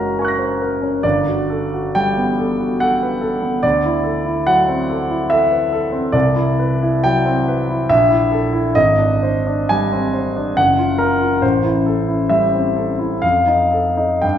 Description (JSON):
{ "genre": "classical, impressionist solo piano", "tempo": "57-73 BPM", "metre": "3/4", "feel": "rubato", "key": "unclear", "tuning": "A4 = 441 Hz", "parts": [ { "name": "warm concert grand piano", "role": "solo", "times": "0.0-14.4 s", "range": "F#1 to A#6", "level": "-14 LUFS", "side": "equal", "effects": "none" } ], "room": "wet recital hall reverb, RT60 1.6 s", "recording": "heard from further back in the room", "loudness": "-14 LUFS", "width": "side -9 dB against mid", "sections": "0.0-14.4 A section", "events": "none", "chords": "0.0 F#add9; 1.0 Gmaj9; 3.6 D9; 6.1 Cmaj7#11; 7.9 A5; 8.7 Abmaj7#11; 10.6 F#maj7; 11.4 Am7; 13.2 F7" }